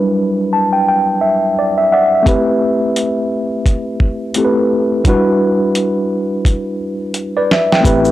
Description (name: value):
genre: lo-fi hip hop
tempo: 86 BPM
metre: 4/4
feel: swing 60% on 16ths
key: E minor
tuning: A4 = 440 Hz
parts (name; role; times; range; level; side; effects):
- tine electric piano; accompaniment; 0.0-8.1 s; F#3 to A5; -13 LUFS; equal; overdrive, fast stereo tremolo, low-pass filter, plate reverb
- dusty soul sampler-style drum kit; drums; 2.3-8.1 s; hi-hat, kick drum, shaker, snare drum; -14 LUFS; equal; none
- sustaining fretless electric bass; bass; 7.8-8.1 s; A1; -19 LUFS; equal; transformer saturation, ensemble chorus
room: moderate studio reverb, RT60 0.6 s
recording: dry, gritty hardware recording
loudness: -12 LUFS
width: side -14 dB against mid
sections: 0.0-7.8 A section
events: filter sweep on tine electric piano 0.0-7.8; tine electric piano fill 0.2-2.3; drum fill 6.4-7.8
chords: 0.0 Em7; 2.3 Am9; 5.0 Em7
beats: 0.17 0.86 1.56 | 2.26 2.96 3.65 4.35 | 5.05 5.75 6.45 7.14 | 7.84